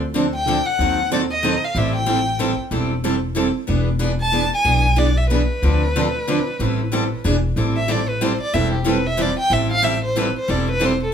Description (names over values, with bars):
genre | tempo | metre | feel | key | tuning
acoustic string swing (jazz manouche) | 186 BPM | 3/4 | swing 59% on 8ths | A minor | A4 = 440 Hz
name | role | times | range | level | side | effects
upright bass | bass | 0.0-11.1 s | E1 to D#2 | -22 LUFS | left 1 dB | none
picked steel-string acoustic guitar | accompaniment | 0.1-10.9 s | D3 to A4 | -23 LUFS | left 2 dB | none
picked steel-string acoustic guitar | accompaniment | 0.1-10.9 s | D3 to B4 | -26 LUFS | right 6 dB | none
warm violin | melody | 0.3-11.1 s | G4 to A5 | -21 LUFS | equal | none
room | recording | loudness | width
light reverb | band playing live in one room | -17 LUFS | side -8 dB against mid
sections
0.0-7.6 A section; 7.6-11.1 B section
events
violin solo 7.6-11.1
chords
0.0 Dm7; 0.8 D#dim7; 1.8 Am7; 3.7 E7; 5.6 Dm7; 6.6 Am9; 7.2 E7; 7.6 Am7